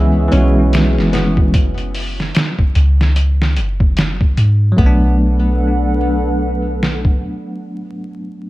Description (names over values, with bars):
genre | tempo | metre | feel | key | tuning
trip hop | 74 BPM | 4/4 | swing 59% on 16ths | B dorian | A4 = 440 Hz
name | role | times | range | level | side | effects
bell-like tine electric piano | accompaniment | 0.0-8.5 s | E3 to F#4 | -18 LUFS | equal | harmonic tremolo, tape echo
warbly tape-like pad | sustained chords | 0.0-7.8 s | C#4 to F#5 | -24 LUFS | equal | chorus, built-in reverb, vintage 12-bit sampler grit
soft 808-style bass | bass | 0.0-7.2 s | F#1 to G#2 | -15 LUFS | equal | none
nylon-string guitar | arpeggios | 0.3-5.2 s | B3 to C#4 | -26 LUFS | equal | vintage 12-bit sampler grit, ping-pong delay
trip hop sampler-style drum kit | drums | 0.3-7.2 s | hi-hat, kick drum, snare drum | -16 LUFS | equal | overdrive
room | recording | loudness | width
little or no reverb | dark, warm production, vinyl crackle | -12 LUFS | side -18 dB against mid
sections
0.0-4.8 A section; 4.8-8.0 B section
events
none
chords
0.0 C#m7; 4.8 Bm7